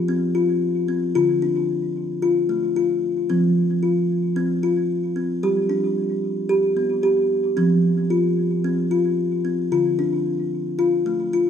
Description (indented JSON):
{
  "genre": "world meditative, meditative tuned percussion",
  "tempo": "112 BPM",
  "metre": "4/4",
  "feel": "straight",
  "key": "F major",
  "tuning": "A4 = 440 Hz",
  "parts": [
    { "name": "kalimba", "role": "solo", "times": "0.0-11.5 s", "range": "D3 to G4", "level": "-19 LUFS", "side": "left 1 dB", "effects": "tape echo" }
  ],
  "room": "wet recital hall reverb, RT60 1.5 s, small room ambience",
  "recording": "none",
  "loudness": "-19 LUFS",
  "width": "side -8 dB against mid",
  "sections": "0.0-11.5 A section",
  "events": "none",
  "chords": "0.0 F5; 1.2 Dm; 3.3 F5; 5.4 G; 7.6 F5; 9.7 Dm",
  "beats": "0.08 0.62 | 1.15 1.69 2.22 2.76 | 3.29 3.83 4.37 4.90 | 5.44 5.97 6.51 7.04 | 7.58 8.12 8.65 9.19 | 9.72 10.26 10.80 11.34"
}